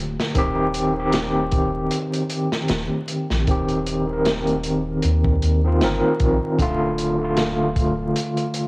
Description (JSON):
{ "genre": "trip hop", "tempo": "77 BPM", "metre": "4/4", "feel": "swing 56% on 16ths", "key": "unclear", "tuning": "A4 = 441 Hz", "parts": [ { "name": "overdriven tine electric piano", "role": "accompaniment", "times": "0.0-8.7 s", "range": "D3 to Bb4", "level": "-20 LUFS", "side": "equal", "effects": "medium tremolo, cassette tape, tape echo" }, { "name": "soft dub sub bass", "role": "bass", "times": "0.0-8.1 s", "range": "D1 to Eb2", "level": "-24 LUFS", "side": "equal", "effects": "none" }, { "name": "crunchy breakbeat drum kit", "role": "drums", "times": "0.2-8.7 s", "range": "hi-hat, kick drum, snare drum", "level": "-24 LUFS", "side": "equal", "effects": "cassette tape" } ], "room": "light reverb, studio ambience", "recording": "home recording on cassette, vinyl crackle", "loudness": "-18 LUFS", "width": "side -26 dB against mid", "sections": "0.0-8.7 A section", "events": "none", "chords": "0.4 Eb6; 6.6 Dm", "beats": "| 0.36 1.14 1.92 2.69 | 3.47 4.25 5.03 5.81 | 6.59 7.37 8.15" }